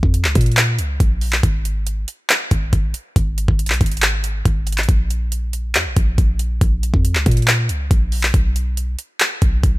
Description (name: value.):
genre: hip hop, trap.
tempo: 139 BPM.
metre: 4/4.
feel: half-time.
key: Bb phrygian.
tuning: A4 = 440 Hz.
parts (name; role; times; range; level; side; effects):
warm 808-style bass; bass; 0.0-9.8 s; Ab1 to Bb2; -19 LUFS; equal; none.
trap drum kit; drums; 0.0-9.7 s; handclaps, hi-hat, kick drum; -17 LUFS; equal; overdrive.
room: little or no reverb.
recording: none.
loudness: -15 LUFS.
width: side -19 dB against mid.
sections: 0.0-9.8 A section.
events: none.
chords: none.